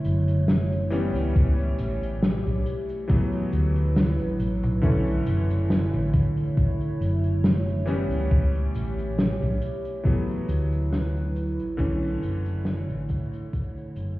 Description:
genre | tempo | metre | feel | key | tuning
vaporwave | 69 BPM | 4/4 | swing 54% on 16ths | B minor | A4 = 440 Hz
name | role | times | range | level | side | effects
warm electric grand piano | accompaniment | 0.0-14.2 s | D3 to C#4 | -31 LUFS | left 1 dB | lush chorus, vintage 12-bit sampler grit, analog delay
warbly tape-like pad | sustained chords | 0.0-14.2 s | D3 to C#5 | -30 LUFS | right 1 dB | chorus, built-in reverb
unplugged drum kit | drums | 0.0-14.2 s | cabasa, hi-hat, snare drum | -25 LUFS | equal | none
hollow-body short-scale fingered electric bass | bass | 0.1-14.2 s | F#1 to D2 | -25 LUFS | equal | none
electronic kick drum | drums | 1.4-13.7 s | none | -23 LUFS | equal | overdrive
room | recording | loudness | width
light reverb, studio ambience | heard muffled through a wall, stone room reverb, cassette tape, EQ | -22 LUFS | side -18 dB against mid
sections
0.0-14.2 A section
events
fade-out 9.5-14.2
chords
0.0 Bm11 (rootless); 0.9 A7; 3.1 D69; 4.8 Bm11 (rootless); 7.9 A7; 10.1 D69; 11.8 Bm11

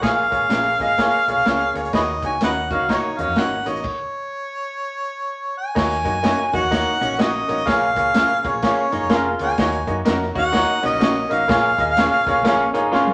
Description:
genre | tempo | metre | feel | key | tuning
uptempo 1960s-style soul | 126 BPM | 4/4 | swing 62% on 8ths | Eb minor | A4 = 440 Hz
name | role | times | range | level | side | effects
warm harmonica | melody | 0.0-12.9 s | Ab4 to Ab5 | -23 LUFS | equal | none
bright upright piano | accompaniment | 0.0-13.1 s | Bb2 to Eb5 | -24 LUFS | equal | none
hollow-body short-scale fingered electric bass | bass | 0.0-13.1 s | F1 to Gb2 | -35 LUFS | equal | none
vintage drum kit | drums | 0.0-13.1 s | crash cymbal, hi-hat, kick drum, snare drum, toms | -26 LUFS | equal | none
electric guitar through a small old amp | stabs | 0.5-13.1 s | Db4 to Bb4 | -31 LUFS | equal | none
electric guitar at the edge of break-up | riff | 2.7-13.1 s | Db4 to Gb4 | -30 LUFS | equal | none
room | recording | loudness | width
wet studio reverb, RT60 0.9 s | none | -20 LUFS | mono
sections
0.0-5.8 A section; 5.8-13.1 B section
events
stop 3.9-5.8; drum fill 12.9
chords
0.0 Bbm7; 1.9 Ebm7; 3.9 N.C.; 5.8 Ebm7; 7.7 Bbm7; 9.6 Ebm7; 11.5 Bbm7

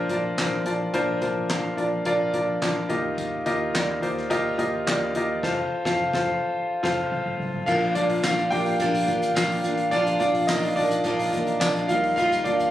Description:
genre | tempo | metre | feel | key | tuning
piano-driven pop | 107 BPM | 4/4 | straight | Bb major | A4 = 440 Hz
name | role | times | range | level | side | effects
clear grand piano | accompaniment | 0.0-12.7 s | Bb2 to G5 | -24 LUFS | left 1 dB | none
vintage muted fingered electric bass | bass | 0.0-12.7 s | F1 to Eb2 | -33 LUFS | equal | none
soft-mallet drum kit | drums | 0.1-12.7 s | crash cymbal, handclaps, hi-hat, kick drum, snare drum, toms | -31 LUFS | equal | none
picked acoustic archtop guitar | riff | 7.7-12.7 s | Bb2 to F4 | -24 LUFS | right 2 dB | none
tambourine | percussion | 8.2-11.7 s | none | -38 LUFS | left 1 dB | none
room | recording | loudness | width
light reverb | recorded on a phone in the room, club ambience, compression | -22 LUFS | side -13 dB against mid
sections
0.0-7.7 A section; 7.7-12.7 B section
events
drum fill 5.4-7.7; band accent 5.4-7.7; grand piano solo 7.7-12.7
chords
0.0 Bb; 2.9 Ebadd9; 5.4 F; 7.7 Bb; 11.9 Ebadd9

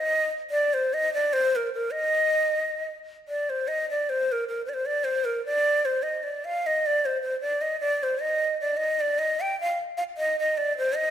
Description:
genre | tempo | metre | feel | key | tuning
balkan folk | free time | none | none | unclear | A4 = 439 Hz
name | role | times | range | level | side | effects
breathy bright ney | solo | 0.0-11.1 s | Bb4 to G5 | -23 LUFS | equal | slapback echo
room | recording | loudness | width
moderate recital hall reverb, RT60 1.7 s | none | -23 LUFS | side -10 dB against mid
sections
0.0-3.3 A section; 3.3-11.1 A section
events
none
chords
none

